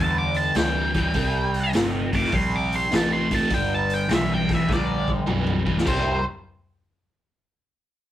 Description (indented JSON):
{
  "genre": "blues rock power trio and southern rock",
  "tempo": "102 BPM",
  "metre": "4/4",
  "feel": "swing 67% on 8ths",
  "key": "C mixolydian",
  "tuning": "A4 = 440 Hz",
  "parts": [
    { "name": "octave-fuzz lead guitar", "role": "melody", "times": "0.0-6.2 s", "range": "C5 to D6", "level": "-26 LUFS", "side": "equal", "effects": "distortion" },
    { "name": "raw garage guitar", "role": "riff", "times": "0.0-6.2 s", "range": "G2 to G4", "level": "-24 LUFS", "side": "equal", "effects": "overdrive, phaser" },
    { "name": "vintage muted fingered electric bass", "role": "bass", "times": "0.0-6.2 s", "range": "G1 to E2", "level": "-28 LUFS", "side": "equal", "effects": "none" },
    { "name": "raw garage drum kit", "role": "drums", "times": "0.3-6.0 s", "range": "crash cymbal, hi-hat, kick drum, snare drum, toms", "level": "-26 LUFS", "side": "equal", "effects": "none" }
  ],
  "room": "moderate studio reverb, RT60 0.6 s",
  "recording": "rough rehearsal-room recording",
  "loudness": "-20 LUFS",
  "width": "side -12 dB against mid",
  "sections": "0.0-5.9 A section; 5.9-8.1 B section",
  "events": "lead electric guitar solo 0.0-5.9; drum fill 4.7-5.9",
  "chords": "0.0 G5; 1.1 C5; 3.5 G; 5.9 C7"
}